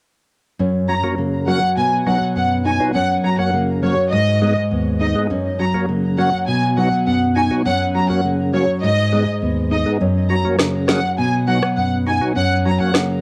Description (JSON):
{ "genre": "dancehall", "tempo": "102 BPM", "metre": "4/4", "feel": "straight", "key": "F# major", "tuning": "A4 = 440 Hz", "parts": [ { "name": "percussive tonewheel organ", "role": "accompaniment", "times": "0.6-13.2 s", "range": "D#2 to G#4", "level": "-24 LUFS", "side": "equal", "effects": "overdrive, chorus vibrato, slow rotary speaker, cassette tape" }, { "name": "nylon-string guitar", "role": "arpeggios", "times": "0.6-13.2 s", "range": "F#2 to D#4", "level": "-22 LUFS", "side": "equal", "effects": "cassette tape, tape echo" }, { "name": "warm symphonic violin section", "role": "melody", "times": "0.9-12.9 s", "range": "C#5 to A#5", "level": "-23 LUFS", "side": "equal", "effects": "cassette tape" }, { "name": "electronic rim click and snare drum", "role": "drums", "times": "10.6-13.1 s", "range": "none", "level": "-21 LUFS", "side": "equal", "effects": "cassette tape" } ], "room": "studio ambience", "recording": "home recording on cassette", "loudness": "-18 LUFS", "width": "mono", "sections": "0.6-13.2 A section", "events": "none", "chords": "0.6 F#; 1.8 B; 2.9 F#; 4.1 G#m; 5.3 F#; 6.5 B; 7.7 F#; 8.8 G#m; 10.0 F#; 11.2 B; 12.4 F#" }